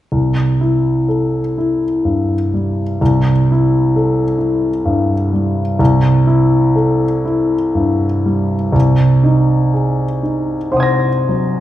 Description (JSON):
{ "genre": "classical, impressionist solo piano", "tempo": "62 BPM", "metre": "3/4", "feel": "uneven beats, rubato", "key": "C lydian", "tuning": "A4 = 440 Hz", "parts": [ { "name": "clear grand piano", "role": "solo", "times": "0.1-11.6 s", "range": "C2 to Bb6", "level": "-12 LUFS", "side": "equal", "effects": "none" } ], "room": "wet recital hall reverb, RT60 1.3 s", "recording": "recorded in a church or concert hall, nothing above 11.0 kHz", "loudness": "-12 LUFS", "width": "side -13 dB against mid", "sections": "0.1-11.6 A section", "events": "none", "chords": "0.1 C6; 8.7 Ab9/C" }